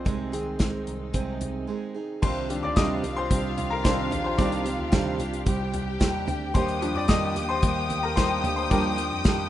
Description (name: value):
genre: piano-driven pop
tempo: 111 BPM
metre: 4/4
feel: straight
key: C minor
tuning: A4 = 440 Hz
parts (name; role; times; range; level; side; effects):
- clear upright piano; accompaniment; 0.0-9.5 s; Eb3 to Eb6; -31 LUFS; left 4 dB; none
- rich studio string section; sustained chords; 0.0-9.5 s; C3 to G4; -41 LUFS; left 2 dB; none
- picked steel-string acoustic guitar; riff; 0.0-9.5 s; C3 to Ab4; -30 LUFS; right 5 dB; none
- bell-like tine electric piano; bass; 0.0-9.5 s; Bb1 to F2; -33 LUFS; equal; fast stereo tremolo
- natural country drum kit; drums; 0.1-9.4 s; crash cymbal, hi-hat, kick drum, snare drum, toms; -24 LUFS; equal; none
- warm studio violin section; second line; 2.2-9.5 s; F4 to Eb6; -31 LUFS; left 3 dB; tape echo
room: light reverb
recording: rough home demo mix, nothing above 10.8 kHz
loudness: -23 LUFS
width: side -12 dB against mid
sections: 0.0-2.2 A section; 2.2-9.5 B section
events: upright piano solo 0.0-2.2, 2.2-9.5; break 1.7-2.2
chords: 0.1 Ab/C; 2.2 Cmadd9